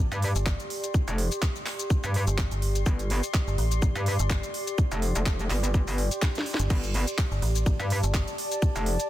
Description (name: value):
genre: bass house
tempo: 125 BPM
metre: 4/4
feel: swing 55% on 16ths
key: unclear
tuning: A4 = 442 Hz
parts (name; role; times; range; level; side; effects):
- metallic FM bass; bass; 0.0-8.3 s; G1 to A1; -27 LUFS; equal; tube saturation, sidechain pumping
- warbly tape-like pad; texture; 0.0-9.1 s; G4 to C6; -34 LUFS; equal; chorus, built-in reverb, sidechain pumping
- metallic wobble bass; bass; 0.1-9.0 s; F1 to G2; -26 LUFS; equal; chorus, overdrive, sidechain pumping
- garage drum kit; drums; 0.1-9.1 s; crash cymbal, handclaps, hi-hat, ride cymbal, shaker, snare drum; -33 LUFS; equal; none
- electronic kick drum; drums; 0.5-8.7 s; none; -26 LUFS; equal; none
room: little or no reverb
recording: dense, heavily limited modern master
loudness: -24 LUFS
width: side -14 dB against mid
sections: 0.0-9.1 A section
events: drum fill 6.2-6.7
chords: 0.0 Gsus2